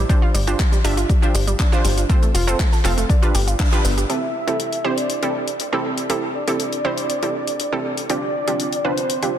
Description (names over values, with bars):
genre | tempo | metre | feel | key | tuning
progressive house | 120 BPM | 4/4 | straight | A minor | A4 = 440 Hz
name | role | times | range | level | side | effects
wide unison pluck | stabs | 0.0-9.3 s | C4 to F5 | -23 LUFS | right 2 dB | cassette tape, sidechain pumping, ping-pong delay
tight sequencer bass | bass | 0.0-4.0 s | F1 to G1 | -20 LUFS | equal | sidechain pumping
analog pluck | arpeggios | 0.1-4.0 s | G3 to A4 | -26 LUFS | equal | chorus, sidechain pumping, ping-pong delay
deep house drum kit | drums | 0.1-9.3 s | handclaps, hi-hat, shaker | -27 LUFS | left 2 dB | overdrive, sidechain pumping on hats, sidechain pumping on perc
electronic kick drum | drums | 0.1-3.7 s | none | -18 LUFS | equal | overdrive
wide unison lead | melody | 4.1-9.4 s | C5 to E5 | -24 LUFS | equal | tape echo
room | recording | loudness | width
light reverb | dense, heavily limited modern master | -17 LUFS | side -10 dB against mid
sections
0.0-4.1 A section; 4.1-9.4 B section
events
band accent 3.6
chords
0.1 G7sus4; 2.1 F; 3.1 G7; 4.1 Am7; 8.1 G7sus4